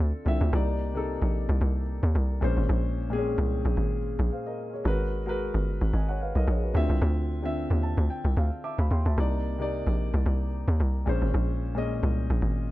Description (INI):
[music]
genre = amapiano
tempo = 111 BPM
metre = 4/4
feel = swing 55% on 16ths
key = unclear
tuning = A4 = 440 Hz
[part]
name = dark concert grand piano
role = accompaniment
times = 0.0-12.7 s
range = Bb2 to D6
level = -31 LUFS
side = left 2 dB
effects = none
[part]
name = tight log drum bass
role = bass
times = 0.0-12.7 s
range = G1 to Eb2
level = -25 LUFS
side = equal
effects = none
[sound]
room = studio ambience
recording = none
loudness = -24 LUFS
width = side -17 dB against mid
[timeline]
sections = 0.0-12.7 A section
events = grand piano fill 7.6-9.2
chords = 0.0 Dm9; 0.5 Cm9; 2.4 Bbm9; 4.9 Abm9; 6.7 Dm9; 9.2 Cm9; 11.1 Bbm9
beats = | 0.53 1.07 1.61 2.15 | 2.69 3.23 3.77 4.31 | 4.85 5.39 5.93 6.48 | 7.02 7.56 8.10 8.64 | 9.18 9.72 10.26 10.80 | 11.34 11.88 12.42